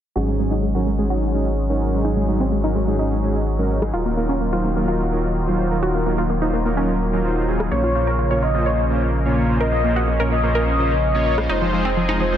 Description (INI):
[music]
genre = progressive house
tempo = 127 BPM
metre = 4/4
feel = straight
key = unclear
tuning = A4 = 440 Hz
[part]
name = lush unison pad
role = sustained chords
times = 0.2-12.4 s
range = Db3 to Ab4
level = -25 LUFS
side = equal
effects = chorus
[part]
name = wide unison pluck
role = arpeggios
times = 0.2-12.4 s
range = F3 to Db5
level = -25 LUFS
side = equal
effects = dub echo
[part]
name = soft supersaw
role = stabs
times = 0.2-12.4 s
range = Ab2 to Eb5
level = -23 LUFS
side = right 2 dB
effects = dub echo
[part]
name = saturated sub bass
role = bass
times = 0.2-12.4 s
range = Eb1 to Bb1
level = -23 LUFS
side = equal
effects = none
[part]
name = electronic rim click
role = drums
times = 3.8-3.9, 7.6-7.7, 11.4-11.5 s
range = none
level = -28 LUFS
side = left 1 dB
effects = low-pass filter on snare, studio reverb
[part]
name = expressive synth lead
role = melody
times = 7.7-12.4 s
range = C5 to Eb5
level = -23 LUFS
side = left 1 dB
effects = analog chorus, dub echo
[sound]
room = light reverb, digital ambience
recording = dense, heavily limited modern master, low-pass filter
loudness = -18 LUFS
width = side -10 dB against mid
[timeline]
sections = 0.2-12.4 A section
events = filter sweep on synth pluck 0.2-12.4; filter sweep 0.2-12.4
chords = 0.2 Ab7sus4; 3.9 Ebmadd9; 7.7 Bbmadd9; 11.5 Fm7